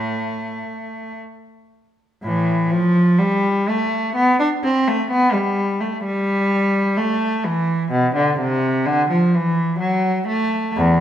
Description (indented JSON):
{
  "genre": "classical, baroque-style suite movement for unaccompanied cello",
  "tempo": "63 BPM",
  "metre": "3/4",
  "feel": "uneven beats, rubato",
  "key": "A minor",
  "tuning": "A4 = 445 Hz",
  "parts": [
    { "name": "warm cello", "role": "solo", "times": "0.0-11.0 s", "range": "E2 to D4", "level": "-17 LUFS", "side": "equal", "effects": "none" }
  ],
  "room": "wet recital hall reverb, RT60 1.4 s",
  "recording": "none",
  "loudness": "-16 LUFS",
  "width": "side -10 dB against mid",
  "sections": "0.0-2.2 A section; 2.2-11.0 A section",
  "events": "none",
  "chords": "none",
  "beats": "0.16 1.21 | 2.24 3.20 4.16 | 5.09 6.02 6.96 | 7.90 8.85 9.78 | 10.76"
}